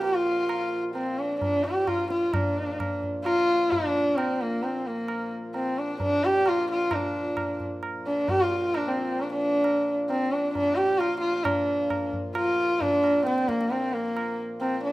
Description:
indian classical, Hindustani; 132 BPM; 5/4; straight; Bb raga bhupali; A4 = 437 Hz
dark sarangi; melody; 0.0-14.9 s; Bb3 to G4; -24 LUFS; equal; slapback echo
pedal harmonium; drone; 0.0-14.9 s; Bb2 to F3; -38 LUFS; left 1 dB
tabla; percussion; 0.0-14.8 s; -34 LUFS; right 2 dB
studio ambience; rough home demo mix; -23 LUFS; side -17 dB against mid
0.0-11.5 A section; 11.5-14.9 B section
speeding up 0.0-14.9
| 0.02 0.49 0.95 1.41 1.87 | 2.33 2.79 3.25 3.71 4.17 | 4.63 5.09 5.54 6.00 6.46 | 6.92 7.37 7.83 8.28 8.74 | 9.19 9.65 10.10 10.55 11.01 | 11.46 11.91 12.36 12.81 13.26 | 13.71 14.16 14.61

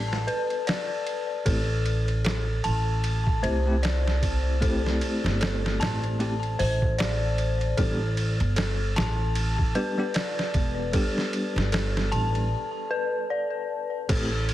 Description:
trip hop; 76 BPM; 4/4; swing 57% on 16ths; A4 = 439 Hz
dark detuned synth bell; arpeggios; 0.0-14.5 s; A4 to A5; -30 LUFS; left 3 dB; chorus, ping-pong delay
upright bass; bass; 0.0-14.5 s; E1 to C2; -26 LUFS; equal
trip hop sampler-style drum kit; drums; 0.1-14.5 s; crash cymbal, hi-hat, kick drum, ride cymbal, snare drum; -29 LUFS; right 1 dB
bell-like tine electric piano; accompaniment; 1.5-14.3 s; G3 to G4; -32 LUFS; equal; tremolo, tape echo
light reverb; heavily compressed radio sound, multiband compression; -23 LUFS; side -14 dB against mid
0.0-14.1 A section
break 12.5-14.1
0.0 G (rootless); 1.5 Am7; 7.8 G
0.67 | 1.46 2.25 3.04 3.83 | 4.62 5.41 6.20 6.99 | 7.78 8.56 9.35 10.14 | 10.93 11.72 12.51 13.30 | 14.09

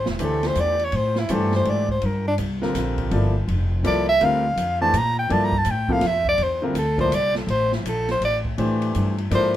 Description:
modal jazz; 165 BPM; 3/4; swing 64% on 8ths; A4 = 442 Hz
breathy soprano saxophone; melody; 0.0-9.5 s; D4 to Bb5; -21 LUFS; equal
upright bass; bass; 0.0-9.6 s; E1 to Bb2; -24 LUFS; equal
open jazz drum kit; drums; 0.1-9.6 s; hi-hat, kick drum, ride cymbal, snare drum; -31 LUFS; right 1 dB
clear baby grand piano; accompaniment; 0.2-9.5 s; C3 to D5; -25 LUFS; left 1 dB
light reverb; minimal, uncompressed stereo recording; -19 LUFS; side -12 dB against mid
0.0-9.6 A section
soprano saxophone solo 0.0-9.6
0.0 Am; 2.0 Gm11; 6.4 Am
0.20 0.56 | 0.92 1.29 1.65 | 2.02 2.38 2.75 | 3.11 3.47 3.84 | 4.20 4.57 4.93 | 5.29 5.66 6.02 | 6.39 6.75 7.12 | 7.48 7.85 8.21 | 8.57 8.94 9.30

